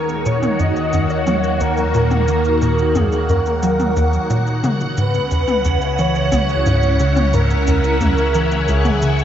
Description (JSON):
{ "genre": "ambient, sequencer-driven space music", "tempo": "89 BPM", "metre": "4/4", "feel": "straight", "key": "Eb phrygian", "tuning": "A4 = 442 Hz", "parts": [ { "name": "breathy flute-like synth lead", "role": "melody", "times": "0.0-9.2 s", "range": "Ab4 to Eb5", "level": "-20 LUFS", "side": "equal", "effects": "ensemble chorus, analog delay" }, { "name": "phased string machine", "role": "sustained chords", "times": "0.0-9.2 s", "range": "Db3 to Ab5", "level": "-20 LUFS", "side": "equal", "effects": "ensemble chorus, phaser" }, { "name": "tight sequencer bass", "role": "riff", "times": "0.0-9.2 s", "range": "Db2 to Gb3", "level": "-20 LUFS", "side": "equal", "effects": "ensemble chorus, analog delay" }, { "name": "fat analog bass", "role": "bass", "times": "0.0-9.2 s", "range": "Db2 to Eb2", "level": "-22 LUFS", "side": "equal", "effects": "none" }, { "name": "pulsing gated texture", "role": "texture", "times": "3.9-9.2 s", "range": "none", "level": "barely audible", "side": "none", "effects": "none" }, { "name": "electronic shaker and toms", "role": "percussion", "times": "0.1-9.2 s", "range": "none", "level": "-26 LUFS", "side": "left 3 dB", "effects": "analog delay" } ], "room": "wet spring reverb, RT60 2.2 s", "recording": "echo-heavy mix, nothing above 7.7 kHz", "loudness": "-14 LUFS", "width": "side -10 dB against mid", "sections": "0.0-9.2 A section", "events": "none", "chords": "0.0 Ebm7; 4.6 Dbm7", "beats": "0.59 1.27 | 1.94 2.62 3.29 3.96 | 4.64 5.31 5.99 6.66 | 7.33 8.01 8.68" }